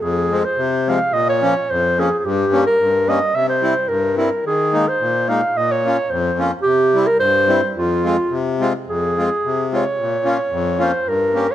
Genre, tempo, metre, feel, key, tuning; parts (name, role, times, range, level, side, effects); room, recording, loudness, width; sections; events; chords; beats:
alpine folk; 109 BPM; 2/4; straight; F minor; A4 = 440 Hz
mellow clarinet; melody; 0.0-11.5 s; F4 to F5; -17 LUFS; right 1 dB
accordion; accompaniment; 0.0-11.5 s; F2 to G4; -20 LUFS; left 3 dB
moderate recital hall reverb, RT60 1.6 s; close, detailed microphones; -15 LUFS; side -12 dB against mid
0.0-8.9 A section; 8.9-11.5 A section
0.0 Fm; 1.1 Bbm; 2.2 Gdim; 3.3 C; 4.4 Ebsus4; 5.6 Bbm; 6.7 C; 7.8 Fm; 10.0 Bbm
| 0.01 0.57 | 1.13 1.68 | 2.23 2.78 | 3.33 3.88 | 4.44 5.00 | 5.56 6.11 | 6.66 7.21 | 7.76 8.31 | 8.87 9.43 | 9.98 10.53 | 11.07